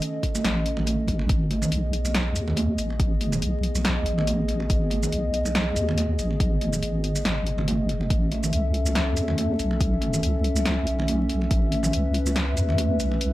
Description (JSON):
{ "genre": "deep dubstep", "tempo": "141 BPM", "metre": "4/4", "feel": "swing 56% on 16ths, half-time", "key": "G# phrygian", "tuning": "A4 = 440 Hz", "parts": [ { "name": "dark analog pad", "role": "sustained chords", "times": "0.0-13.3 s", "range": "B3 to E5", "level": "-29 LUFS", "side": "left 1 dB", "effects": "lush chorus" }, { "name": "deep house drum kit", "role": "drums", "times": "0.0-13.3 s", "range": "hi-hat, shaker, snare drum", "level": "-28 LUFS", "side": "equal", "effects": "overdrive" }, { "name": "electronic kick drum", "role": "drums", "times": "0.2-11.6 s", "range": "none", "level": "-24 LUFS", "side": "equal", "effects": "overdrive" }, { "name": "congas", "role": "percussion", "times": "0.3-13.2 s", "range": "none", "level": "-30 LUFS", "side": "right 2 dB", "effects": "dub echo" }, { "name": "deep soft wobble bass", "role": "bass", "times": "0.4-13.3 s", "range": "G#1 to E2", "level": "-25 LUFS", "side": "equal", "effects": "chorus, tube saturation" } ], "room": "light reverb, digital ambience", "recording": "vinyl crackle", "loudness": "-22 LUFS", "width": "side -16 dB against mid", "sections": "0.0-13.3 A section", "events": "none", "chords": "0.0 A; 1.3 G#m; 8.1 A", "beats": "0.02 0.44 0.87 | 1.29 1.72 2.15 2.57 | 3.00 3.42 3.85 4.27 | 4.70 5.12 5.55 5.97 | 6.40 6.83 7.25 7.68 | 8.10 8.53 8.95 9.38 | 9.80 10.23 10.66 11.08 | 11.51 11.93 12.36 12.78 | 13.21" }